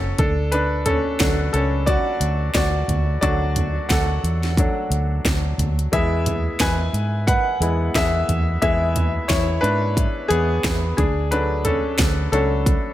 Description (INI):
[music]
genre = piano-driven pop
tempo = 89 BPM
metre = 4/4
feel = swing 56% on 16ths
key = unclear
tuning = A4 = 440 Hz
[part]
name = bright upright piano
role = accompaniment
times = 0.0-12.9 s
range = F#3 to G#5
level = -22 LUFS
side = left 1 dB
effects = none
[part]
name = vintage muted fingered electric bass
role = bass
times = 0.0-12.8 s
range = F#1 to G#2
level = -22 LUFS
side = equal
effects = none
[part]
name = house drum kit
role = drums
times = 0.2-12.8 s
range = handclaps, hi-hat, kick drum, snare drum, toms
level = -22 LUFS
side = right 1 dB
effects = none
[sound]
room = digital ambience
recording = none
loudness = -18 LUFS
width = side -13 dB against mid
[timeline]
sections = 0.0-12.9 A section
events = upright piano solo 0.0-12.9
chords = 0.2 D; 5.9 E; 11.0 D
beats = | 0.53 1.20 1.88 2.55 | 3.23 3.90 4.58 5.25 | 5.92 6.60 7.27 7.95 | 8.62 9.29 9.97 10.64 | 11.32 11.99 12.66